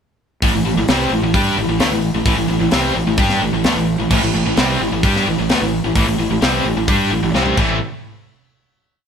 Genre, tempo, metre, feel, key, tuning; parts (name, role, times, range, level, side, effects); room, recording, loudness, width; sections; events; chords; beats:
hard rock; 130 BPM; 4/4; straight; A minor; A4 = 441 Hz
crunchy overdriven guitar; riff; 0.4-7.8 s; A2 to G4; -22 LUFS; equal; tremolo
distorted electric guitar; riff; 0.4-7.8 s; A2 to G4; -22 LUFS; right 5 dB; distortion
tight distorted guitar; riff; 0.4-7.8 s; A2 to G4; -20 LUFS; left 5 dB; distortion
fuzz fingered electric bass; bass; 0.4-7.8 s; A1 to G2; -22 LUFS; equal; overdrive
tight metal drum kit; drums; 0.4-7.7 s; crash cymbal, hi-hat, kick drum, snare drum, toms; -20 LUFS; equal
moderate stone room reverb, RT60 1.1 s; band playing live in one room; -14 LUFS; side -7 dB against mid
0.4-7.8 riff; 7.8-9.1 final hit
drum fill 7.3-7.8
0.4 Am; 7.8 N.C.
| 0.42 0.88 1.34 1.80 | 2.26 2.72 3.18 3.64 | 4.11 4.57 5.03 5.50 | 5.96 6.42 6.88 7.35